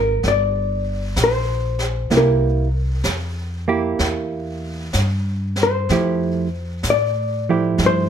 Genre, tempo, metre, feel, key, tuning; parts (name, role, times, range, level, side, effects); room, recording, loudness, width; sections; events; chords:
jazz ballad; 63 BPM; 4/4; swing 66% on 8ths; A4 = 438 Hz
hollow-body jazz guitar; melody; 0.0-8.1 s; Bb4 to D5; -20 LUFS; left 3 dB; plate reverb
hollow-body jazz guitar; accompaniment; 0.0-8.1 s; F3 to G4; -20 LUFS; right 5 dB
upright bass; bass; 0.0-8.1 s; G1 to A2; -22 LUFS; equal
jazz brush drum kit; drums; 0.2-8.1 s; brushed snare drum, hi-hat, snare drum; -27 LUFS; right 1 dB
light reverb; -18 LUFS; side -8 dB against mid
0.0-8.1 A section
0.0 Gm7; 2.1 C7; 5.9 Fmaj9